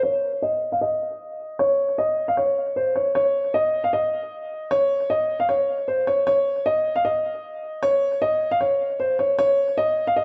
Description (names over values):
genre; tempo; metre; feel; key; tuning
hip hop; 154 BPM; 4/4; half-time; unclear; A4 = 440 Hz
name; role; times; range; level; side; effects
dark grand piano; solo; 0.0-10.2 s; C5 to F5; -22 LUFS; equal; low-pass filter, digital delay
room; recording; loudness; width
moderate recital hall reverb, RT60 1.4 s, studio reverb; none; -22 LUFS; mono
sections
0.0-6.3 A section; 6.3-10.2 B section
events
filter sweep on grand piano 0.0-6.3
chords
none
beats
| 0.03 0.42 0.81 1.20 | 1.59 1.98 2.37 2.76 | 3.15 3.54 3.93 4.32 | 4.71 5.10 5.49 5.88 | 6.27 6.66 7.05 7.44 | 7.83 8.22 8.61 9.00 | 9.38 9.78 10.16